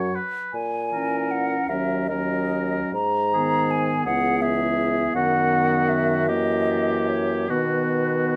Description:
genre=classical, slow romantic movement for wind quintet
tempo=46-58 BPM (dotted quarters)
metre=6/8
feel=rubato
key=B major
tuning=A4 = 440 Hz
part: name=hollow concert flute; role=melody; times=0.0-8.4 s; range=B4 to A#5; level=-28 LUFS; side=equal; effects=none
part: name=clear oboe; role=second line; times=0.0-8.4 s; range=F#4 to C#5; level=-30 LUFS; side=equal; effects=none
part: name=clear clarinet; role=accompaniment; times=0.0-8.4 s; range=A#3 to C#4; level=-31 LUFS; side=equal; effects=none
part: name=warm French horn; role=accompaniment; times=0.0-8.4 s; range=D#3 to F#3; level=-32 LUFS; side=equal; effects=none
part: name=mellow bassoon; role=bass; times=0.0-8.4 s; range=C#2 to B2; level=-29 LUFS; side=equal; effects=none
room=moderate large studio reverb, RT60 1.2 s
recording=none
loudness=-23 LUFS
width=mono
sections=0.0-8.4 A section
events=none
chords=0.0 F#5; 0.5 A#dim; 1.7 D#m7; 2.9 G#m; 4.1 C#m7; 5.1 B/F#; 6.3 F#7b9; 7.5 B

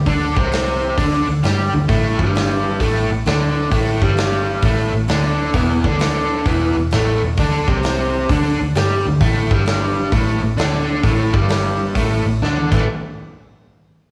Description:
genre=blues rock power trio and southern rock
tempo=131 BPM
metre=4/4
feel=swing 66% on 8ths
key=unclear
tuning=A4 = 440 Hz
part: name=overdriven electric guitar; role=riff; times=0.0-12.8 s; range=E2 to G4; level=-21 LUFS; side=equal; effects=harmonic tremolo
part: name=vintage muted fingered electric bass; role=bass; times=0.0-12.9 s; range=E1 to G2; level=-22 LUFS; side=equal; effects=none
part: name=big rock drum kit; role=drums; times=0.1-12.8 s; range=crash cymbal, hi-hat, kick drum, snare drum, toms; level=-24 LUFS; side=equal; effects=none
room=moderate large studio reverb, RT60 1.5 s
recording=band playing live in one room, studio ambience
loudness=-17 LUFS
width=mono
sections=0.0-12.9 A section; 12.9-14.1 B section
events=drum fill 12.4-12.9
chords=0.0 Csus2; 1.9 Gsus2; 5.5 E7sus4; 7.4 Csus2; 9.2 Gsus2; 12.6 A5; 12.9 N.C.

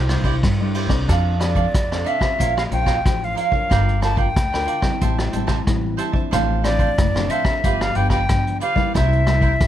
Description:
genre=samba and choro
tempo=92 BPM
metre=4/4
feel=straight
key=F major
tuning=A4 = 438 Hz
part: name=silver concert flute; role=melody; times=0.0-9.7 s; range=C5 to A5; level=-23 LUFS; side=left 1 dB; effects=none
part: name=cavaquinho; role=accompaniment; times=0.0-9.5 s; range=D4 to A5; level=-25 LUFS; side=right 8 dB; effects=none
part: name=nylon-string guitar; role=accompaniment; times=0.0-9.7 s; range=G2 to C5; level=-27 LUFS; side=left 3 dB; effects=none
part: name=upright bass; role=bass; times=0.0-9.7 s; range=Gb1 to G2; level=-21 LUFS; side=equal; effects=none
part: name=vintage brush drum kit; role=drums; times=0.1-9.7 s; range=hi-hat, kick drum, ride cymbal, rim click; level=-22 LUFS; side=equal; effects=none
room=little or no reverb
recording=close, detailed microphones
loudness=-17 LUFS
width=side -11 dB against mid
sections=0.0-1.1 A section; 1.1-9.7 B section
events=none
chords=0.0 Cadd9; 1.1 F6; 2.4 Bbmadd9; 3.7 Gm7; 5.0 Am7; 6.3 Dm7/A; 7.6 G7; 8.9 C7

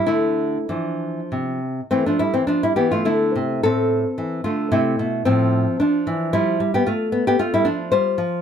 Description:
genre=classical, baroque-style dance for nylon-string guitar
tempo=97-117 BPM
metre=3/4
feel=rubato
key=A minor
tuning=A4 = 440 Hz
part: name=nylon-string guitar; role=solo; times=0.0-8.4 s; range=A2 to C5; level=-18 LUFS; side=equal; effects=none
room=light reverb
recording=none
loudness=-18 LUFS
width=side -8 dB against mid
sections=0.0-1.9 A section; 1.9-8.4 A section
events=none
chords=0.1 Dm; 1.9 Am/E; 3.6 Am; 5.3 F/A; 6.9 F

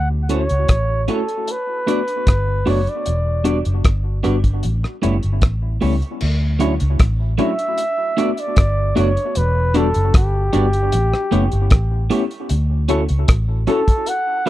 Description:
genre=lovers rock reggae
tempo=76 BPM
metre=4/4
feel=straight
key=D major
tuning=A4 = 441 Hz
part: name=breathy flugelhorn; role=melody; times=0.0-14.5 s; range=G4 to F#5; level=-22 LUFS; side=equal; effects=tape echo
part: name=vintage muted fingered electric bass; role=bass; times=0.0-13.7 s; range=E1 to D2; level=-18 LUFS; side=equal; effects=none
part: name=tine electric piano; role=accompaniment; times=0.3-14.5 s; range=F#3 to A4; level=-24 LUFS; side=left 2 dB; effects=medium stereo tremolo, tape echo
part: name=electric guitar at the edge of break-up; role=stabs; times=0.3-14.5 s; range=A3 to D5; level=-24 LUFS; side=right 3 dB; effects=spring reverb
part: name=cloth-damped thuddy drum kit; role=drums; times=0.3-14.5 s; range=crash cymbal, hi-hat, kick drum, rim click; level=-16 LUFS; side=equal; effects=none
room=little or no reverb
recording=dry, close 1970s-style studio recording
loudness=-16 LUFS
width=side -14 dB against mid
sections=0.0-6.2 A section; 6.2-14.5 B section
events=none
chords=0.0 Dmaj7; 1.5 Gmaj7; 3.1 Em7; 4.6 A7; 6.2 Dmaj7; 7.8 Gmaj7; 9.4 Em7; 10.9 A7; 12.5 Dmaj7

